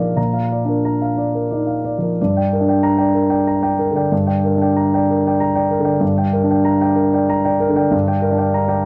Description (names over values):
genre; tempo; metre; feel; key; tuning
neoclassical minimalist piano; 94 BPM; 3/4; rubato; G minor; A4 = 440 Hz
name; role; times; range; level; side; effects
warm concert grand piano; solo; 0.0-8.9 s; G2 to Bb5; -17 LUFS; equal; none
room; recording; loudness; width
light reverb; dry, close 1970s-style studio recording; -17 LUFS; mono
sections
0.0-2.2 A section; 2.2-8.9 A section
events
none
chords
0.0 Bb; 2.2 Gm